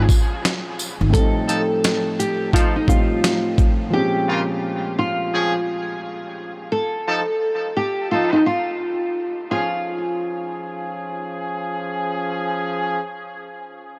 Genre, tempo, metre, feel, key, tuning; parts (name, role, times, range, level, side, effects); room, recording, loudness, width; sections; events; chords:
hip hop, boom-bap hip-hop; 86 BPM; 4/4; swing 61% on 16ths; A4 = 441 Hz
nylon-string guitar; melody; 0.0-11.6 s; Eb4 to A4; -25 LUFS; equal; analog chorus, high-pass filter, low-pass filter, delay
dark concert grand piano; accompaniment; 0.0-6.7 s; A2 to Eb4; -28 LUFS; equal; cassette tape, high-pass filter, low-pass filter
warm horn section; stabs; 0.0-13.0 s; Db3 to A4; -29 LUFS; equal; high-pass filter, low-pass filter, delay
upright bass; bass; 0.0-1.1 s; Ab1; -21 LUFS; equal
dusty soul sampler-style drum kit; drums; 0.1-3.8 s; hi-hat, kick drum, shaker, snare drum; -21 LUFS; equal
tambourine; percussion; 0.1-1.0 s; -35 LUFS; equal
moderate huge ambient reverb, RT60 9.2 s; dreamy mix soaked in reverb; -21 LUFS; mono
0.0-9.5 A section; 9.5-12.3 B section
0.0 Bbm7; 1.1 F7/A; 3.9 Bbm7; 6.7 F7; 9.5 Db/F